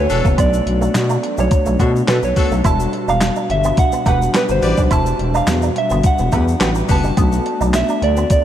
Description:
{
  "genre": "early-eighties boogie funk",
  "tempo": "106 BPM",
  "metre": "4/4",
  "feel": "straight",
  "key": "E minor",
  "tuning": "A4 = 439 Hz",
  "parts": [
    { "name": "soft synth bell", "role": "melody", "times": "0.0-8.4 s", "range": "B4 to A5", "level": "-20 LUFS", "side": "right 2 dB", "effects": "chorus, analog delay" },
    { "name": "mellow synth brass", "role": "accompaniment", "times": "0.0-8.4 s", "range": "B2 to F#4", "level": "-23 LUFS", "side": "left 2 dB", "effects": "chorus" },
    { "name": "growling FM bass", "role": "bass", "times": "0.0-8.2 s", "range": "E1 to B2", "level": "-18 LUFS", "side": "equal", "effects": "none" },
    { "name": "mellow horn section", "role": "second line", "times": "0.1-7.1 s", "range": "B3 to D5", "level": "-27 LUFS", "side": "left 3 dB", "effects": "analog delay" },
    { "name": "clean 12-bit digital drum machine", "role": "drums", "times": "0.1-8.4 s", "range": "handclaps, hi-hat, kick drum, snare drum", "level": "-19 LUFS", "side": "equal", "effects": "none" },
    { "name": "egg shaker", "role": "percussion", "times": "0.1-8.4 s", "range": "none", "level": "-36 LUFS", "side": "left 8 dB", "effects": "none" },
    { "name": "electric guitar with an envelope filter", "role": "riff", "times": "0.2-8.3 s", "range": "G3 to E4", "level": "-26 LUFS", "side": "right 5 dB", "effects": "wide subtle chorus" }
  ],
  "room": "moderate cathedral reverb, RT60 4.2 s",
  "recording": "dreamy mix soaked in reverb",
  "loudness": "-14 LUFS",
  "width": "side -10 dB against mid",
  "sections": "0.0-8.4 A section",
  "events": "none",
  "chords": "0.0 Em9",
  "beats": "| 0.38 0.95 1.51 2.08 | 2.65 3.21 3.78 4.34 | 4.91 5.48 6.04 6.61 | 7.17 7.74 8.31"
}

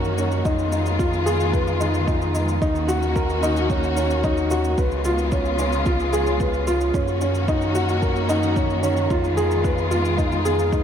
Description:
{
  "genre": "piano and strings electronica",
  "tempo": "111 BPM",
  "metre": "4/4",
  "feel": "straight",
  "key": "unclear",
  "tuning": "A4 = 440 Hz",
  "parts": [
    { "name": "warm studio string section", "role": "sustained chords", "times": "0.0-10.8 s", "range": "Db3 to Gb4", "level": "-26 LUFS", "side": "left 2 dB", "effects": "sidechain pumping" },
    { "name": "dark upright piano", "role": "riff", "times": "0.0-10.8 s", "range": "Db4 to Cb5", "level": "-22 LUFS", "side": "equal", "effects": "ping-pong delay" },
    { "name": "warm sub bass", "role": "bass", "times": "0.0-10.8 s", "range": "Db2 to Gb2", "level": "-25 LUFS", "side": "equal", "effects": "tube saturation, sidechain pumping" },
    { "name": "shaker", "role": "drums", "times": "0.0-10.8 s", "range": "none", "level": "-41 LUFS", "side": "equal", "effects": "none" },
    { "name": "electronic kick drum", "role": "drums", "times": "0.5-10.8 s", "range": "none", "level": "-24 LUFS", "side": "equal", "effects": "none" }
  ],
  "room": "moderate huge ambient reverb, RT60 7.9 s",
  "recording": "dreamy mix soaked in reverb",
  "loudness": "-19 LUFS",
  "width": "side -8 dB against mid",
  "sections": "0.0-10.8 A section",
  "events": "none",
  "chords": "0.5 Fm7b5; 2.6 Ebm7; 4.8 Db7; 6.9 Gb6; 9.1 Fm7b5",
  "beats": "| 0.46 1.00 1.54 2.08 | 2.62 3.16 3.70 4.24 | 4.78 5.32 5.86 6.40 | 6.94 7.48 8.02 8.56 | 9.11 9.65 10.19 10.73"
}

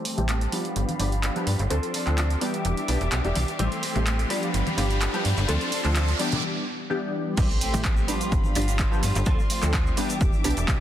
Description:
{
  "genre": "filtered disco house",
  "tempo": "127 BPM",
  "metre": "4/4",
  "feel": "swing 53% on 16ths",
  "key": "A minor",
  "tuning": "A4 = 440 Hz",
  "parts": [
    { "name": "dark studio string section", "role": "sustained chords", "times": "0.0-10.8 s", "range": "F4 to D6", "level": "-35 LUFS", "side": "left 1 dB", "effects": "sidechain pumping, low-pass filter" },
    { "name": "clean electric guitar", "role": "riff", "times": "0.0-10.8 s", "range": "E3 to A4", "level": "-33 LUFS", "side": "left 1 dB", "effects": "sidechain pumping, low-pass filter" },
    { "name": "riser and impact", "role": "sound effects", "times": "2.6-9.3 s", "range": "none", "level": "-34 LUFS", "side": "right 1 dB", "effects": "none" },
    { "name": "punchy analog drum machine", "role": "drums", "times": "0.1-10.8 s", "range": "crash cymbal, handclaps, hi-hat, shaker", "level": "-31 LUFS", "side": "right 2 dB", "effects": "sidechain pumping on hats, sidechain pumping on cymbals, sidechain pumping on perc" },
    { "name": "funky polysynth comp", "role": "accompaniment", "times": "0.2-10.5 s", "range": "E3 to A4", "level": "-29 LUFS", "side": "equal", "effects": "chorus, phaser, sidechain pumping, low-pass filter" },
    { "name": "slap-like FM bass", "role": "bass", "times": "0.2-10.8 s", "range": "E1 to G2", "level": "-25 LUFS", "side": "equal", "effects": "sidechain pumping, low-pass filter" },
    { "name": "egg shaker and congas", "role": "percussion", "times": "0.2-10.8 s", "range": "none", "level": "-36 LUFS", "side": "left 3 dB", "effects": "sidechain pumping on perc, low-pass filter on perc" },
    { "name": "electronic kick drum", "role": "drums", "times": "7.4-10.8 s", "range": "none", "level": "-24 LUFS", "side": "equal", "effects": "none" }
  ],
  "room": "light reverb, digital ambience",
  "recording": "dense, heavily limited modern master",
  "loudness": "-22 LUFS",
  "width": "side -11 dB against mid",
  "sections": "0.0-7.4 A section; 7.4-10.8 B section",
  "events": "build-up 0.0-7.4; filter sweep 0.0-7.4; riser 2.6-6.4; break 6.4-7.4; drop 7.4-10.8; impact 7.4-9.3",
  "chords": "0.0 Am7; 0.5 G7; 1.7 Dm7; 2.4 Em7; 3.6 Am7; 4.3 G7; 5.5 Dm7; 6.2 Em7; 7.4 Am7; 8.1 G7; 9.3 Dm7; 10.0 Em7",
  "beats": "0.29 0.76 1.23 | 1.71 2.18 2.65 3.12 | 3.60 4.07 4.54 5.01 | 5.49 5.96 6.43 6.90 | 7.38 7.85 8.32 8.79 | 9.27 9.74 10.21 10.68"
}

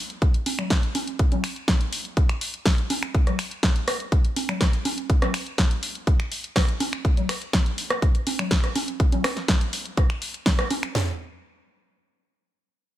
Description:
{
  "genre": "house",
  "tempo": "123 BPM",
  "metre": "4/4",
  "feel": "straight",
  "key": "none",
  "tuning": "none",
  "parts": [
    { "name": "house drum kit", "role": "drums", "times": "0.1-10.9 s", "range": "finger snaps, hi-hat, snare drum", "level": "-27 LUFS", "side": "equal", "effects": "studio reverb" },
    { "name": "house drum kit", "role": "drums", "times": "0.2-11.1 s", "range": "kick drum, snare drum, toms", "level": "-20 LUFS", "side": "equal", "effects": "studio reverb" },
    { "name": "electronic congas and rim click", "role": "percussion", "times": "0.5-10.8 s", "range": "none", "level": "-28 LUFS", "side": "right 1 dB", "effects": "sidechain pumping on perc, studio reverb, sidechain pumping on snare" }
  ],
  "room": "little or no reverb",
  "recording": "none",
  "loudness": "-21 LUFS",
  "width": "side -13 dB against mid",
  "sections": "0.0-10.9 A section; 10.9-12.9 B section",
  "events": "none",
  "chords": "none",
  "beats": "0.22 0.71 | 1.19 1.68 2.17 2.66 | 3.15 3.63 4.12 4.61 | 5.10 5.58 6.07 6.56 | 7.05 7.54 8.02 8.51 | 9.00 9.49 9.97 10.46 | 10.95"
}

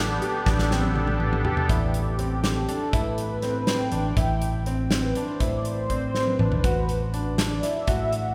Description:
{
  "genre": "progressive instrumental, band music in an uneven meter",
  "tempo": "243 BPM (eighths)",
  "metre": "5/8",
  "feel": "straight",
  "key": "A dorian",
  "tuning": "A4 = 439 Hz",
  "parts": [
    { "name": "sweeping resonant pad", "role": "accompaniment", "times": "0.0-8.3 s", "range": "B3 to G5", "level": "-30 LUFS", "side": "equal", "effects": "chorus" },
    { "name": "clear baby grand piano", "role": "arpeggios", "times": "0.0-8.3 s", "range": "C4 to G4", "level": "-33 LUFS", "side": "equal", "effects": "none" },
    { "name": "fingered electric bass", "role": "bass", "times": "0.0-8.3 s", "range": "A1 to A2", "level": "-30 LUFS", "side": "equal", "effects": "none" },
    { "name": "natural country drum kit", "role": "drums", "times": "0.2-8.2 s", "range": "hi-hat, kick drum, snare drum, toms", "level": "-29 LUFS", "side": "equal", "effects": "none" }
  ],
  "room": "wet church reverb, RT60 3.4 s",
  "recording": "recorded in a church or concert hall",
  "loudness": "-25 LUFS",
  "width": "mono",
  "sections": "0.0-1.7 A section; 1.7-8.3 B section",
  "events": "drum fill 0.5-1.7, 6.2-6.6; analog synth pad solo 1.7-8.3",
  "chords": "0.0 G/A; 1.7 Amadd9; 6.6 E9sus4/A",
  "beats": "0.22 | 0.47 0.71 0.96 1.21 1.45 | 1.70 1.95 2.19 2.44 2.69 | 2.94 3.18 3.43 3.68 3.92 | 4.17 4.42 4.67 4.91 5.16 | 5.41 5.66 5.90 6.15 6.40 | 6.65 6.89 7.14 7.39 7.63 | 7.88 8.13"
}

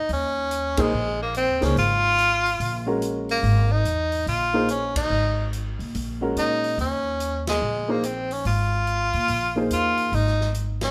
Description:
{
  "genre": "modal jazz",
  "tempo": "144 BPM",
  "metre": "4/4",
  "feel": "swing 65% on 8ths",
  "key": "Eb dorian",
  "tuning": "A4 = 438 Hz",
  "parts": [
    { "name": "bright tenor saxophone", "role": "melody", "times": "0.0-10.9 s", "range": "Ab3 to F4", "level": "-26 LUFS", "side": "equal", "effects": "none" },
    { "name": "upright bass", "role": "bass", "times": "0.1-10.9 s", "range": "Ab1 to Bb2", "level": "-28 LUFS", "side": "equal", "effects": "none" },
    { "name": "swinging big-band drum kit", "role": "drums", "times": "0.1-10.9 s", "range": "hi-hat, kick drum, ride cymbal, snare drum", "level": "-37 LUFS", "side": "equal", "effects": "none" },
    { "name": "warm baby grand piano", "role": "accompaniment", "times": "0.8-10.1 s", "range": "Ab3 to C5", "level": "-28 LUFS", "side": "equal", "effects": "none" }
  ],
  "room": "moderate large studio reverb, RT60 1.4 s",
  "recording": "none",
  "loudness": "-23 LUFS",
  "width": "mono",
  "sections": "0.0-10.9 A section",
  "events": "band accent 0.7, 4.9, 7.4, 10.7",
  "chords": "0.0 Ebsus4",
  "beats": "| 0.09 0.51 0.93 1.34 | 1.76 2.18 2.60 3.01 | 3.43 3.85 4.27 4.69 | 5.11 5.53 5.94 6.36 | 6.78 7.20 7.62 8.04 | 8.45 8.87 9.29 9.71 | 10.12 10.54"
}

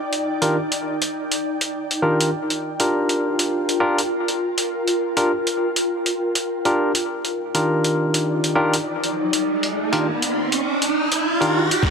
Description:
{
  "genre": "glitch hop",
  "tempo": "101 BPM",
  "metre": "4/4",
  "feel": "swing 60% on 16ths",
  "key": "unclear",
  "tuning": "A4 = 441 Hz",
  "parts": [
    { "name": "ethereal airy pad", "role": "texture", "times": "0.0-11.9 s", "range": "Eb4 to G5", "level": "-24 LUFS", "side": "equal", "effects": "ensemble chorus, built-in reverb, sidechain pumping" },
    { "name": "boom bap sampler-style drum kit", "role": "drums", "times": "0.1-11.9 s", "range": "hi-hat, snare drum", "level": "-23 LUFS", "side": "equal", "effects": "none" },
    { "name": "barky tine electric piano", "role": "stabs", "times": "0.4-11.7 s", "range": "Eb3 to Bb4", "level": "-22 LUFS", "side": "equal", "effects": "sidechain pumping, low-pass filter, ping-pong delay" },
    { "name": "riser", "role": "sound effects", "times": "8.3-11.9 s", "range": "none", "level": "-24 LUFS", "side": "right 1 dB", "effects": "none" },
    { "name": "electronic kick drum", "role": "drums", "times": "11.8-11.9 s", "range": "none", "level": "-18 LUFS", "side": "equal", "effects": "none" }
  ],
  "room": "moderate plate reverb, RT60 3.5 s",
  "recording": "vinyl crackle",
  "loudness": "-19 LUFS",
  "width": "side -6 dB against mid",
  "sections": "0.0-11.8 A section",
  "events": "filter sweep on tine electric piano 0.0-11.8; riser 8.3-11.8",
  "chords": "0.0 Ebmaj7; 2.3 Gm7; 7.1 Ebmaj7",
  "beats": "0.54 1.13 1.73 | 2.32 2.92 3.51 4.10 | 4.70 5.29 5.89 6.48 | 7.07 7.67 8.26 8.86 | 9.45 10.04 10.64 11.23 | 11.83"
}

